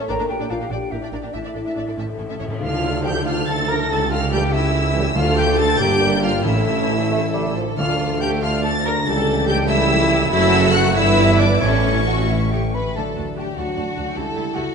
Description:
classical, dramatic, fast romantic movement for symphony orchestra; 87-102 BPM (dotted quarters); 6/8; rubato; D minor, D major from 10.3 s; A4 = 439 Hz
rich symphonic violin section; melody; 0.0-14.6 s; Bb4 to Bb6; -25 LUFS; left 1 dB
warm symphonic violin section; second line; 0.0-14.7 s; C#4 to E5; -27 LUFS; left 2 dB
rich symphonic viola section; accompaniment; 0.0-14.6 s; C#4 to Bb4; -25 LUFS; equal
concert harp; arpeggios; 0.0-14.7 s; F#2 to E5; -28 LUFS; left 6 dB
rich symphonic cello section; bass; 0.0-14.6 s; C#2 to Bb2; -27 LUFS; right 4 dB
hollow concert flute; second line; 0.1-14.7 s; C#5 to B5; -26 LUFS; left 1 dB
dark French horn section; sustained chords; 0.1-14.7 s; A3 to Bb4; -27 LUFS; left 4 dB
dark symphonic double bass section; bass; 0.1-14.6 s; F#1 to D2; -26 LUFS; right 3 dB
cymbal swell and tam-tam; percussion; 0.1-4.3 s; -32 LUFS; left 1 dB
timpani; percussion; 2.0-2.6, 5.2-8.4, 11.6-12.3 s; A2 to D3; -29 LUFS; equal
clear tuba; bass; 2.6-12.7 s; F#1 to D2; -27 LUFS; right 5 dB
warm trombone section; sustained chords; 3.0-14.7 s; C#3 to E4; -27 LUFS; right 4 dB
mellow bassoon; accompaniment; 7.1-7.7 s; F3 to A3; -27 LUFS; right 4 dB
wet scoring stage reverb, RT60 2.1 s; nothing above 10.4 kHz; -16 LUFS; side -6 dB against mid
0.0-2.6 A section; 2.6-13.0 B section; 13.0-14.7 C section
timpani fill 2.0-2.6; band accent 2.6-3.0
0.1 Gm/Bb; 1.3 Asus4; 2.0 A; 2.6 Dm; 3.9 A7/C#; 5.2 Dm; 5.8 Gm; 6.5 A; 7.8 Dm; 9.1 A7/C#; 10.3 F#m; 11.0 Em/G; 11.6 A; 13.0 D; 14.2 A7/C#

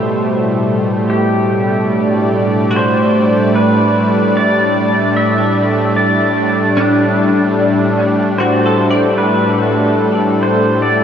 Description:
ambient; 74 BPM; 4/4; straight; A4 = 438 Hz
pedal steel guitar; melody; 0.0-11.0 s; G4 to E5; -18 LUFS; equal; diffuse ambient delay
warm analog pad; sustained chords; 0.0-11.0 s; A2 to D5; -13 LUFS; equal; chorus
semi-hollow electric guitar; arpeggios; 0.0-10.6 s; D4 to D5; -21 LUFS; left 1 dB; ensemble chorus, diffuse ambient delay
bowed-like drone; drone; 0.0-11.0 s; A3; -24 LUFS; equal
wet huge ambient reverb, RT60 7.5 s; -11 LUFS; side -8 dB against mid
0.0-11.0 A section
fade-in on clean electric guitar 0.0-11.0
0.0 Am7; 1.1 G/A

